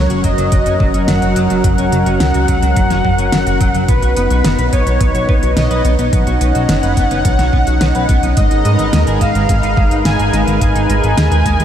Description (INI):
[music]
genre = synthwave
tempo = 107 BPM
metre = 4/4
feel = straight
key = unclear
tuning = A4 = 438 Hz
[part]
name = soft supersaw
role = melody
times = 0.0-11.6 s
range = B4 to G#5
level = -18 LUFS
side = equal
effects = tape echo
[part]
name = lush unison pad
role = sustained chords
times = 0.0-11.6 s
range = F#3 to F#5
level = -18 LUFS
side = equal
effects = chorus, sidechain pumping
[part]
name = chorused synth bass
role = bass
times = 0.0-11.6 s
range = F#1 to G#2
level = -16 LUFS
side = equal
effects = none
[part]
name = clean electric guitar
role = riff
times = 0.1-11.6 s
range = F#3 to B4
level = -24 LUFS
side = right 1 dB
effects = analog chorus, diffuse ambient delay
[part]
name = pop drum kit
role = drums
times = 0.1-11.6 s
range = hi-hat, snare drum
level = -22 LUFS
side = equal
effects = none
[part]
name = electronic kick drum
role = drums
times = 0.2-11.6 s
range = none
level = -16 LUFS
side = equal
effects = none
[sound]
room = moderate huge ambient reverb, RT60 7.8 s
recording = dreamy mix soaked in reverb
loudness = -11 LUFS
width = side -10 dB against mid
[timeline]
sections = 0.0-11.6 A section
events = none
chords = 0.0 F#; 3.9 B; 8.4 G#madd9